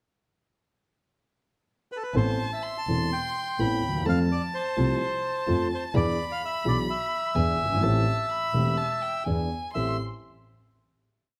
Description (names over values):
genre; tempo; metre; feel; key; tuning
tango; 126 BPM; 4/4; rubato; A minor; A4 = 440 Hz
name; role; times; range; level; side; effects
bandoneon; melody; 1.9-10.0 s; A4 to A5; -32 LUFS; equal; none
warm concert grand piano; accompaniment; 2.1-10.0 s; E1 to A4; -31 LUFS; equal; none
dark double bass; bass; 2.1-10.0 s; E1 to F2; -31 LUFS; equal; none
warm violin; second line; 2.2-10.0 s; G5 to C6; -36 LUFS; equal; none
room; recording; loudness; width
light reverb; close, detailed microphones; -27 LUFS; mono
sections
0.2-2.2 pickup bar; 2.2-9.8 A section; 9.8-11.4 final chord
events
none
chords
0.2 N.C.; 2.2 Amadd9; 4.1 F; 6.0 E7; 7.8 Am7; 9.3 E7; 9.8 Am7